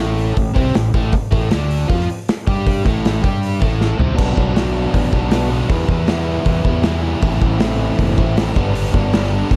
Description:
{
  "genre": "indie rock",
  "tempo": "158 BPM",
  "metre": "4/4",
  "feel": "straight",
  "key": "A dorian",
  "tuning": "A4 = 439 Hz",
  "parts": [
    { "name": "biting overdriven guitar", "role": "riff", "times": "0.0-9.6 s", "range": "G2 to G4", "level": "-22 LUFS", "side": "equal", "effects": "none" },
    { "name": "fuzz fingered electric bass", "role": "bass", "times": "0.0-9.6 s", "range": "F#1 to G2", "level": "-22 LUFS", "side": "equal", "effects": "overdrive" },
    { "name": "loose indie drum kit", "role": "drums", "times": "0.2-9.6 s", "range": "crash cymbal, hi-hat, kick drum, snare drum, toms", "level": "-20 LUFS", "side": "equal", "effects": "none" }
  ],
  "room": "small room reverb",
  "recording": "dark, warm production",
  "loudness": "-17 LUFS",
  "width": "mono",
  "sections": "0.0-4.2 A section; 4.2-9.6 B section",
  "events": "drum fill 3.8-4.2",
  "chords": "0.0 Am; 4.2 Bm; 5.7 Em; 7.2 Am; 8.6 G"
}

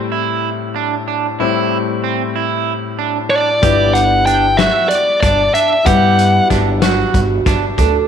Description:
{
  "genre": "progressive instrumental, band music in an uneven meter",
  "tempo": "188 BPM (eighths)",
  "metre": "7/8",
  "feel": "straight",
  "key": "G major",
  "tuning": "A4 = 440 Hz",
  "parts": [
    { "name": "clear concert grand piano", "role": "accompaniment", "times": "0.0-8.1 s", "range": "A2 to E4", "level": "-21 LUFS", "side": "left 9 dB", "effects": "none" },
    { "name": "electric guitar at the edge of break-up", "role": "arpeggios", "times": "0.1-8.0 s", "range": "C4 to G4", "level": "-20 LUFS", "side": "right 11 dB", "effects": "none" },
    { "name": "bluesy overdriven lead guitar", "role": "melody", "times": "3.3-6.5 s", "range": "D5 to G5", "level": "-13 LUFS", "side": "equal", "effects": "distortion" },
    { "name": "upright bass", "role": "bass", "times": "3.6-8.0 s", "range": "G1 to G2", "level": "-17 LUFS", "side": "right 1 dB", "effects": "none" },
    { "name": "loose indie drum kit", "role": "drums", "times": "3.6-7.9 s", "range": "hi-hat, kick drum, snare drum", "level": "-18 LUFS", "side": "left 2 dB", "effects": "none" },
    { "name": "vibraphone with medium hard mallets", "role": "second line", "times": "6.4-8.1 s", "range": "F#4 to A4", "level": "-20 LUFS", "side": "right 10 dB", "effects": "none" }
  ],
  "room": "moderate echo chamber reverb, RT60 2.5 s",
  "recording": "1960s-style stereo with parts hard left and right",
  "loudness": "-12 LUFS",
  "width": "side -8 dB against mid",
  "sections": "0.0-8.1 A section",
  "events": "none",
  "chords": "0.0 Am; 3.6 Gmaj7"
}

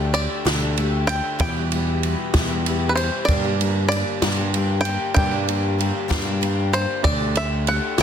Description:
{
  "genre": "indie folk with a building arrangement",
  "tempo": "64 BPM (dotted quarters)",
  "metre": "6/8",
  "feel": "straight",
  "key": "unclear",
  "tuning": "A4 = 440 Hz",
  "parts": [
    { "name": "bluegrass banjo", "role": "melody", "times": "0.0-8.0 s", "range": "B4 to G5", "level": "-24 LUFS", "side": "equal", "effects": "slapback echo" },
    { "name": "clear grand piano", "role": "accompaniment", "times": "0.0-8.0 s", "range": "G1 to E5", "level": "-32 LUFS", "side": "right 10 dB", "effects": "none" },
    { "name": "picked twelve-string acoustic guitar", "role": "accompaniment", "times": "0.0-8.0 s", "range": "E2 to G4", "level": "-27 LUFS", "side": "left 8 dB", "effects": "none" },
    { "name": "picked electric bass", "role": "bass", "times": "0.0-8.0 s", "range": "D2 to G2", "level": "-23 LUFS", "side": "equal", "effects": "none" },
    { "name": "compact cocktail drum kit", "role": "drums", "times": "0.1-8.0 s", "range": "kick drum, ride cymbal, snare drum", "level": "-24 LUFS", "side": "right 1 dB", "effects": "none" }
  ],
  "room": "small room ambience",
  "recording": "dense, heavily limited modern master",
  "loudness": "-19 LUFS",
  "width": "side -8 dB against mid",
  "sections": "0.0-8.0 A section",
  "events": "none",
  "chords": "0.0 Dsus4; 1.4 Em; 3.3 Gm; 7.0 Dsus4"
}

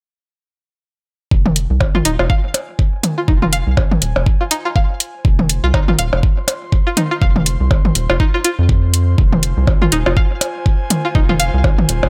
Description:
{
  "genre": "minimal techno",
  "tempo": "122 BPM",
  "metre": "4/4",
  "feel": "swing 58% on 16ths",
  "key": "F minor",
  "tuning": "A4 = 440 Hz",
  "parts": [
    { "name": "rubbery square bass", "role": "bass", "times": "1.3-12.1 s", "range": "Eb1 to F2", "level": "-19 LUFS", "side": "equal", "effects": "sidechain pumping" },
    { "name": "electronic kick drum", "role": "drums", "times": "1.3-11.8 s", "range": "none", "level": "-17 LUFS", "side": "equal", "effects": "none" },
    { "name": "airy breathy pad", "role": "texture", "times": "2.4-12.1 s", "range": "F4 to C6", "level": "-33 LUFS", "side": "equal", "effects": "chorus, sidechain pumping" },
    { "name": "electronic toms and percussion blips", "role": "percussion", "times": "1.5-12.1 s", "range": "none", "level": "-22 LUFS", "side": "equal", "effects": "tape echo" },
    { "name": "electronic hi-hat", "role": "drums", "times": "1.6-12.0 s", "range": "none", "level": "-19 LUFS", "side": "equal", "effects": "none" },
    { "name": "string-like resonator pluck", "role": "riff", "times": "1.9-11.4 s", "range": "Eb4 to F5", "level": "-22 LUFS", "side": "equal", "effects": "chorus, phaser, sidechain pumping, digital delay" }
  ],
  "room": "little or no reverb",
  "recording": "none",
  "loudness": "-15 LUFS",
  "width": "mono",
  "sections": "1.3-12.1 A section",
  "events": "fade-in on analog synth pad 1.3-12.1",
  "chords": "1.3 Fm"
}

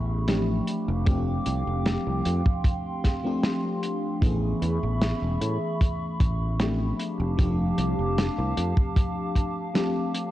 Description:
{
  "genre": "vaporwave",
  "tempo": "76 BPM",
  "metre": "4/4",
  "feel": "straight",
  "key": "unclear",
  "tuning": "A4 = 442 Hz",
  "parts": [
    { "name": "FM electric piano with soft pad layer", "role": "accompaniment", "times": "0.0-10.3 s", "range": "E3 to G#4", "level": "-29 LUFS", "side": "left 1 dB", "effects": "lush chorus, tape echo" },
    { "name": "warbly tape-like pad", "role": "sustained chords", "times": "0.0-10.3 s", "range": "A3 to D6", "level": "-33 LUFS", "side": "equal", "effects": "chorus, built-in reverb" },
    { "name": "sustaining fretless electric bass", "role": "bass", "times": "0.0-8.7 s", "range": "E1 to A2", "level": "-26 LUFS", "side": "equal", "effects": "none" },
    { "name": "warm soul drum kit", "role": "drums", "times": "0.3-10.3 s", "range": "hi-hat, snare drum", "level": "-30 LUFS", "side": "equal", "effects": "none" },
    { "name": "kick drum", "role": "drums", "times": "1.1-9.5 s", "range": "none", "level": "-24 LUFS", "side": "equal", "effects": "none" }
  ],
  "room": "light reverb, studio ambience",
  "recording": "dark, warm production, cassette tape",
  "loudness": "-23 LUFS",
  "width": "side -14 dB against mid",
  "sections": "0.0-10.3 A section",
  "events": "none",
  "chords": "0.0 Amaj9; 0.7 F69; 4.2 Amaj9; 7.0 F69"
}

